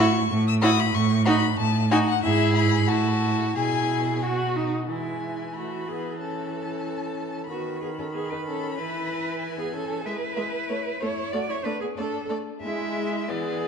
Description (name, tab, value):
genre	quick classical-period movement for string quartet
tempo	93 BPM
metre	2/4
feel	straight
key	E major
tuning	A4 = 440 Hz
part	rich violin	melody	0.0-13.7 s	G#3 to E6	-30 LUFS	left 10 dB	none
part	clear violin	second line	0.0-13.7 s	F#4 to B5	-31 LUFS	left 2 dB	none
part	rich viola	accompaniment	0.0-13.7 s	D#3 to F#4	-28 LUFS	right 2 dB	none
part	rich cello	bass	0.0-13.7 s	G#2 to D5	-27 LUFS	right 4 dB	none
room	moderate concert hall reverb, RT60 2.4 s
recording	dark, warm production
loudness	-23 LUFS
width	side -6 dB against mid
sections	0.0-4.9 A section; 4.9-13.7 B section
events	none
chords	0.0 F#m7/A; 0.9 A69; 2.2 E/G#; 2.9 F#m7/A; 3.6 E/B; 4.2 B; 4.9 E; 6.2 A/E; 7.5 B/D#; 8.8 E; 10.7 A; 11.3 Bm7/A; 12.6 E/G#